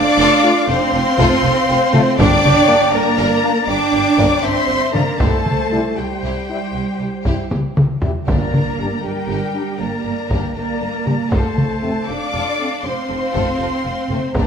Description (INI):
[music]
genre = cinematic, epic orchestral film score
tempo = 79 BPM (dotted quarters)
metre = 12/8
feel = straight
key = unclear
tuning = A4 = 441 Hz
[part]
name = warm symphonic violin section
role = melody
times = 0.0-14.5 s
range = G5 to D6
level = -24 LUFS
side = left 3 dB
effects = none
[part]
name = bright flute section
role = second line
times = 0.0-14.5 s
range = Bb4 to G5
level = -24 LUFS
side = left 3 dB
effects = none
[part]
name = warm symphonic violin section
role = second line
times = 0.0-14.5 s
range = Bb3 to Bb4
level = -28 LUFS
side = left 2 dB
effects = none
[part]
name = warm symphonic viola section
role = accompaniment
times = 0.0-14.5 s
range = G4 to D5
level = -22 LUFS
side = left 1 dB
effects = none
[part]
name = clear trombone section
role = sustained chords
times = 0.0-14.5 s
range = G3 to D4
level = -23 LUFS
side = right 3 dB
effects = none
[part]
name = rich symphonic cello section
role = bass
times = 0.0-14.5 s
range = G3 to D4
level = -22 LUFS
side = right 4 dB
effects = none
[part]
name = clear symphonic double bass section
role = bass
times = 0.2-14.4 s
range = F1 to C2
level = -25 LUFS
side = right 3 dB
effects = none
[part]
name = mellow French horn section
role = sustained chords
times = 0.4-14.2 s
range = G3 to F4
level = -25 LUFS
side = left 3 dB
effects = none
[part]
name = taiko ensemble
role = drums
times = 1.2-14.5 s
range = none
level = -18 LUFS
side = equal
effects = none
[part]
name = timpani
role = percussion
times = 2.2-2.9, 8.3-9.0 s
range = G2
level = -27 LUFS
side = right 1 dB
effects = none
[sound]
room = wet scoring stage reverb, RT60 1.5 s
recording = none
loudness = -14 LUFS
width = side -7 dB against mid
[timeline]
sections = 0.0-14.5 A section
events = drum fill 7.5-8.3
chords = 0.0 F; 2.2 Gm; 5.2 C; 8.3 Gm; 11.3 F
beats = 0.69 1.44 | 2.19 2.94 3.69 4.44 | 5.20 5.97 6.74 7.51 | 8.28 9.04 9.80 10.55 | 11.31 12.09 12.84 13.60 | 14.35